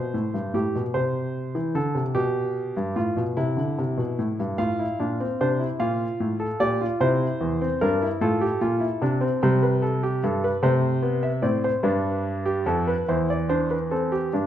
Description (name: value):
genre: classical, baroque-style 3-part fugue for grand piano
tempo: 49 BPM (dotted quarters)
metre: 6/8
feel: straight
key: unclear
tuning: A4 = 435 Hz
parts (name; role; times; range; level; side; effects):
- warm grand piano; solo; 0.0-14.5 s; E2 to F5; -22 LUFS; equal; none
room: moderate recital hall reverb, RT60 1.4 s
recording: none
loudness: -22 LUFS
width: side -11 dB against mid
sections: 0.0-14.3 A section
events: none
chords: 0.0 C5; 1.0 D5/C; 2.2 G7/B; 3.4 C; 4.6 F/A; 5.8 Gm7; 7.0 C7; 8.2 F/A; 9.4 C5; 10.6 D5/C; 11.9 G7; 13.1 C/E